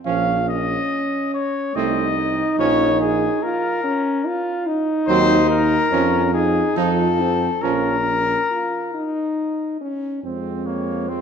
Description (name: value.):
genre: classical, brass quintet.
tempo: 71 BPM.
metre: 3/4.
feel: straight.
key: Bb minor.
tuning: A4 = 440 Hz.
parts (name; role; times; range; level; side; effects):
mellow trumpet; melody; 0.1-11.2 s; Ab4 to F5; -22 LUFS; left 4 dB; none.
clear trumpet; second line; 0.1-11.2 s; Bb3 to Eb4; -28 LUFS; right 10 dB; none.
clear French horn; accompaniment; 0.1-11.2 s; Ab3 to F4; -22 LUFS; equal; none.
mellow trombone; accompaniment; 0.1-11.2 s; F3 to A3; -27 LUFS; right 6 dB; none.
clear tuba; bass; 0.1-11.2 s; Bb1 to F2; -24 LUFS; right 3 dB; none.
room: moderate scoring stage reverb, RT60 1.9 s.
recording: dark, warm production.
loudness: -18 LUFS.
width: side -7 dB against mid.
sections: 0.0-10.2 A section.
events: none.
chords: 0.1 Bbm; 1.8 Adim/C; 2.6 Bbm; 5.1 Cdim/Eb; 5.9 Bbm/F; 6.8 F7; 7.6 Bbm; 10.2 Fm.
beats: | 0.06 0.91 1.75 | 2.59 3.42 4.25 | 5.08 5.92 6.76 | 7.63 8.51 9.38 | 10.24 11.09.